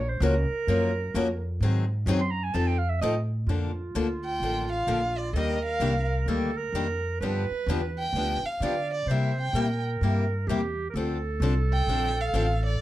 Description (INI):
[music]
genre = acoustic string swing (jazz manouche)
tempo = 129 BPM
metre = 4/4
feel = swing 65% on 8ths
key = unclear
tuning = A4 = 440 Hz
[part]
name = bright clarinet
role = second line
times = 0.0-12.8 s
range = F4 to C6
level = -32 LUFS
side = right 4 dB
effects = none
[part]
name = upright bass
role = bass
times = 0.0-12.8 s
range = A1 to D3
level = -27 LUFS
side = equal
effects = none
[part]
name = picked steel-string acoustic guitar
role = accompaniment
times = 0.2-12.5 s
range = C3 to Bb4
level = -30 LUFS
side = left 4 dB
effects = none
[part]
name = warm violin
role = melody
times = 4.3-12.8 s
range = D5 to G5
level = -30 LUFS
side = right 1 dB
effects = none
[sound]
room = moderate club reverb, RT60 0.7 s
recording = dark, warm production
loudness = -24 LUFS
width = side -14 dB against mid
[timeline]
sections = 0.0-3.5 A section; 3.5-12.8 B section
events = clarinet solo 0.0-3.5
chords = 0.0 Gbmaj7/Bb; 1.6 Ab7; 2.5 F7; 3.5 Bbmaj7; 5.3 Ebmaj9; 7.2 G7; 9.1 C7; 10.9 Dm7